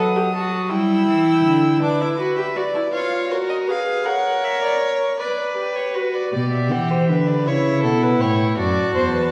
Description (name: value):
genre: classical, baroque-style fugue for string quartet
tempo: 54 BPM (dotted quarters)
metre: 6/8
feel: straight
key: unclear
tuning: A4 = 440 Hz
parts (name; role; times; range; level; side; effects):
- dark violin; melody; 0.0-9.3 s; B4 to E6; -28 LUFS; equal; none
- dark violin; second line; 0.0-9.3 s; G4 to A5; -26 LUFS; equal; none
- rich viola; accompaniment; 0.0-9.3 s; D4 to B4; -24 LUFS; equal; none
- dark cello; bass; 0.0-1.8, 6.3-9.3 s; E2 to G3; -23 LUFS; equal; none
room: wet recital hall reverb, RT60 1.6 s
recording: heard from further back in the room, vinyl crackle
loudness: -20 LUFS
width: mono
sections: 0.0-6.3 A section; 6.3-9.3 B section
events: none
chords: 0.0 B7/F# (rootless); 0.7 Em; 1.8 Bm/D; 2.9 C#7/E#; 4.1 F#/A#; 5.2 Bm; 6.3 G/B; 7.5 A7; 8.6 D7